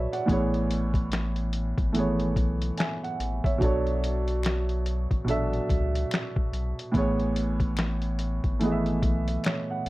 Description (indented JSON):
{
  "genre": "lo-fi hip hop",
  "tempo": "72 BPM",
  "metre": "4/4",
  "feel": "swing 60% on 16ths",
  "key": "unclear",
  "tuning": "A4 = 441 Hz",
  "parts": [
    { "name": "dark upright piano", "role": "accompaniment", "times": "0.0-9.9 s", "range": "A2 to G#5", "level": "-27 LUFS", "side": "right 1 dB", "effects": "cassette tape, low-pass filter" },
    { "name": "saturated sub bass", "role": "bass", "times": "0.0-9.9 s", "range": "G#1 to C#2", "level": "-29 LUFS", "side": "equal", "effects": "none" },
    { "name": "lo-fi sampler-style drum kit", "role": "drums", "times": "0.1-9.9 s", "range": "finger snaps, hi-hat, kick drum, snare drum", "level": "-28 LUFS", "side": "left 1 dB", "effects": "none" },
    { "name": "finger snap", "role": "percussion", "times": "4.4-9.7 s", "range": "none", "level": "-42 LUFS", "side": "left 6 dB", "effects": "none" }
  ],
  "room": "light reverb",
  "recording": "dark, warm production",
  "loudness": "-24 LUFS",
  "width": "side -18 dB against mid",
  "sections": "0.0-9.9 A section",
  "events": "none",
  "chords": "0.3 Amaj7; 3.6 Bm9; 6.9 Amaj7"
}